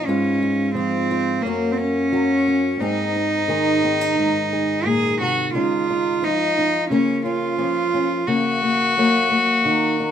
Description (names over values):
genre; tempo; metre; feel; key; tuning
acoustic folk duo or small band; 88 BPM; 4/4; straight; Db major; A4 = 436 Hz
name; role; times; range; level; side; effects
warm cello; melody; 0.0-10.1 s; Bb3 to Ab4; -19 LUFS; equal; none
fingerpicked old ladder-braced acoustic guitar; accompaniment; 0.0-10.1 s; Gb2 to Ab4; -22 LUFS; left 1 dB; none
room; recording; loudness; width
moderate studio ambience, RT60 0.4 s; minimal, uncompressed stereo recording; -17 LUFS; side -9 dB against mid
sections
0.0-10.1 A section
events
none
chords
0.1 Db/Ab; 1.5 Gb; 2.8 Abadd9; 5.6 Dbadd9; 6.9 Bbm/Db; 8.3 Gb/Db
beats
| 0.08 0.77 1.45 2.14 | 2.82 3.50 4.19 4.87 | 5.55 6.24 6.92 7.60 | 8.29 8.97 9.65